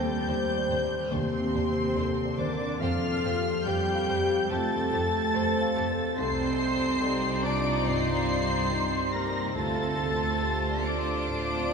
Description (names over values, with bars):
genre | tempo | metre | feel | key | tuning
cinematic, emotional film score for orchestra | 71 BPM | 4/4 | rubato | C dorian | A4 = 439 Hz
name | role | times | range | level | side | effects
dark studio violin section | melody | 0.0-11.7 s | C6 to D7 | -34 LUFS | left 1 dB | none
mellow hollow silver concert flute | second line | 0.0-11.7 s | C5 to D6 | -34 LUFS | left 1 dB | none
dark concert grand piano | accompaniment | 0.0-11.7 s | C2 to F5 | -33 LUFS | left 1 dB | none
warm studio viola section | accompaniment | 0.0-11.7 s | C4 to D5 | -34 LUFS | equal | none
dark French horn section | sustained chords | 0.0-11.7 s | Eb4 to C5 | -33 LUFS | left 3 dB | none
warm studio cello section | bass | 0.0-11.7 s | C3 to D4 | -33 LUFS | right 3 dB | none
warm studio violin section | second line | 0.3-11.7 s | D4 to D5 | -37 LUFS | left 3 dB | none
dark studio double bass section | bass | 0.3-11.7 s | C2 to F2 | -34 LUFS | right 3 dB | none
room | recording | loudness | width
wet cathedral reverb, RT60 4.3 s | none | -25 LUFS | side -5 dB against mid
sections
0.0-11.7 A section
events
none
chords
0.0 Cmadd9/Eb; 2.8 Fadd9; 6.2 Cmadd9; 9.5 Dm7